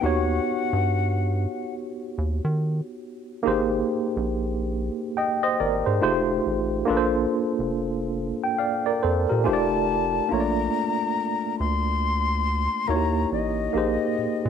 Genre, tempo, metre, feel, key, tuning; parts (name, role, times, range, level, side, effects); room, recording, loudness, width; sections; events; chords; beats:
R&B; 70 BPM; 4/4; swing 62% on 16ths; Bb major; A4 = 436 Hz
breathy silver concert flute; melody; 0.0-1.7, 9.4-14.5 s; Eb5 to C6; -27 LUFS; left 8 dB; slapback echo
tine electric piano; accompaniment; 0.0-14.5 s; A3 to G5; -24 LUFS; right 1 dB; fast stereo tremolo
rubbery square bass; bass; 0.0-14.5 s; F1 to Eb3; -27 LUFS; right 1 dB
light reverb; -22 LUFS; side -7 dB against mid
0.0-10.3 A section; 10.3-14.5 B section
0.0 Eb7alt; 3.4 Abmaj9; 6.0 F9; 6.9 Bbmaj9; 9.4 F13; 10.3 Bbmaj7; 12.9 Eb7b9; 13.7 Abmaj9/Bb
| 0.02 0.88 1.73 2.59 | 3.45 4.31 5.16 6.02 | 6.88 7.73 8.59 9.45 | 10.31 11.16 12.02 12.88 | 13.73